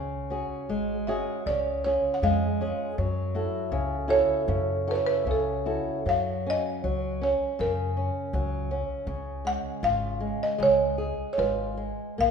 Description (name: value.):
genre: fado-style ballad.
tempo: 78 BPM.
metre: 2/4.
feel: rubato.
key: F# minor, F# major from 6.0 s.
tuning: A4 = 440 Hz.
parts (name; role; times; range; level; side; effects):
flamenco guitar; accompaniment; 0.0-12.3 s; C#3 to A4; -30 LUFS; equal; none.
upright bass; bass; 0.0-12.3 s; G#1 to F#2; -32 LUFS; left 1 dB; none.
buzzing marimba with medium mallets; melody; 1.1-12.3 s; A4 to F#5; -26 LUFS; right 2 dB; none.
room: moderate scoring stage reverb, RT60 1.9 s.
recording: minimal, uncompressed stereo recording.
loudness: -25 LUFS.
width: side -6 dB against mid.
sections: 0.0-6.0 A section; 6.0-12.3 B section.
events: none.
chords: 0.0 C#sus4; 1.5 C#; 3.0 F#m7; 6.0 F#; 9.1 C#.